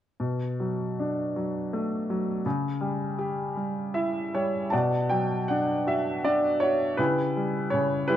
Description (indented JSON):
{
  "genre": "classical, lyrical solo piano",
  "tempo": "53 BPM (dotted quarters)",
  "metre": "6/8",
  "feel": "uneven beats, rubato",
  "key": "B minor",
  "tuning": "A4 = 445 Hz",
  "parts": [
    { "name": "clear baby grand piano", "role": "solo", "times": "0.2-8.2 s", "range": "B2 to A5", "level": "-25 LUFS", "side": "equal", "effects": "none" }
  ],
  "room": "moderate recital hall reverb, RT60 1.6 s",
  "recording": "dark, warm production",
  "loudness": "-25 LUFS",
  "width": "side -11 dB against mid",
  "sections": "0.2-4.7 A section; 4.7-8.2 B section",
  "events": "grand piano fill 3.6-4.7",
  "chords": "0.2 Bm7; 2.5 C#dim; 4.7 Bm; 7.0 C#m7b5",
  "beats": "| 0.20 1.37 | 2.45 3.57 | 4.72 5.87 | 6.99 8.09"
}